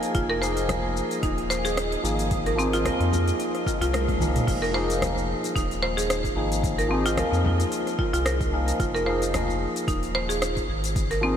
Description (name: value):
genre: organic downtempo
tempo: 111 BPM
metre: 4/4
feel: swing 55% on 16ths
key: F minor pentatonic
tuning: A4 = 439 Hz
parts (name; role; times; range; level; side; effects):
- barky tine electric piano; accompaniment; 0.0-11.4 s; F3 to Ab4; -28 LUFS; left 1 dB; overdrive, phaser, sidechain pumping, tape echo
- buzzing marimba with hard mallets; arpeggios; 0.0-11.4 s; C4 to C5; -27 LUFS; right 1 dB; tape echo
- afro-pop drum kit; drums; 0.0-11.2 s; crash cymbal, hi-hat, rim click, shaker, toms; -32 LUFS; left 1 dB; overdrive
- wind-like tuned noise texture; texture; 0.0-4.5 s; Ab4 to Ab5; -38 LUFS; right 3 dB; built-in reverb, ensemble chorus
- round analog bass; bass; 0.1-11.4 s; Eb1 to F2; -28 LUFS; equal; sidechain pumping
- electronic kick drum; drums; 0.1-11.1 s; none; -29 LUFS; equal; overdrive
- frame drum; percussion; 0.7-9.5 s; none; -37 LUFS; left 2 dB; none
room: moderate huge ambient reverb, RT60 7.4 s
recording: dreamy mix soaked in reverb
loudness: -22 LUFS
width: side -9 dB against mid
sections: 0.0-4.5 A section; 4.5-11.4 B section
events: drum fill 3.9-4.5; band accent 3.9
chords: 0.0 Fm7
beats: | 0.15 0.69 1.23 1.77 | 2.31 2.85 3.39 3.93 | 4.47 5.01 5.56 6.10 | 6.64 7.18 7.72 8.26 | 8.80 9.34 9.88 10.42 | 10.96